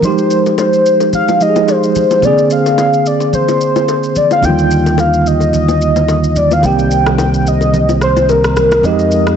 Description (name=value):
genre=amapiano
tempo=109 BPM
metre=4/4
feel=swing 55% on 16ths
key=F dorian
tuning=A4 = 440 Hz
part: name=warm velvety synth lead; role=melody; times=0.0-9.4 s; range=Bb4 to G5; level=-13 LUFS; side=equal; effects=chorus, tape echo
part: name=tine electric piano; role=accompaniment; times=0.0-9.4 s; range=C3 to Ab4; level=-15 LUFS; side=right 1 dB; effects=medium stereo tremolo
part: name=electronic shaker and rim click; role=drums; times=0.0-9.4 s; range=none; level=-24 LUFS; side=equal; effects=none
part: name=congas and bongos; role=percussion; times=0.0-9.4 s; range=none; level=-20 LUFS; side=left 5 dB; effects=none
part: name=modern bright fingered electric bass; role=bass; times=4.4-9.4 s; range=C2 to F2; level=-15 LUFS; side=equal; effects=none
room=light reverb, digital ambience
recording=nothing above 8.0 kHz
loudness=-9 LUFS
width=side -8 dB against mid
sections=0.0-9.4 A section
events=none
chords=0.0 Fm9; 2.2 Bb9; 4.4 Ebmaj9; 6.6 Cm7; 8.8 Fm9